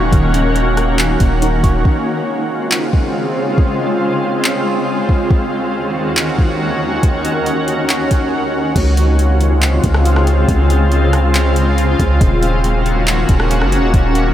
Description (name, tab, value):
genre	hip hop, atmospheric cloud-rap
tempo	139 BPM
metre	4/4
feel	half-time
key	unclear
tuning	A4 = 440 Hz
part	shimmering ambient pad	sustained chords	0.0-14.3 s	Eb2 to Gb4	-16 LUFS	equal	chorus, built-in reverb, sidechain pumping
part	warbly dusty pluck	arpeggios	0.0-1.9 s	Eb3 to Db6	-25 LUFS	right 2 dB	none
part	long sustained 808-style bass	bass	0.0-1.8, 8.8-14.3 s	Eb1 to Db2	-14 LUFS	equal	none
part	smooth R&B drum kit	drums	0.1-14.3 s	crash cymbal, handclaps, hi-hat, kick drum, rim click	-17 LUFS	equal	none
room	moderate huge ambient reverb, RT60 8.6 s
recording	dreamy mix soaked in reverb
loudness	-12 LUFS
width	side -12 dB against mid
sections	0.0-1.9 A section; 1.9-8.8 B section; 8.8-14.3 C section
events	none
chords	0.0 Ebm7; 1.9 Dbmaj7; 5.3 Ebm7; 8.8 Dbmaj7; 12.2 Ebm7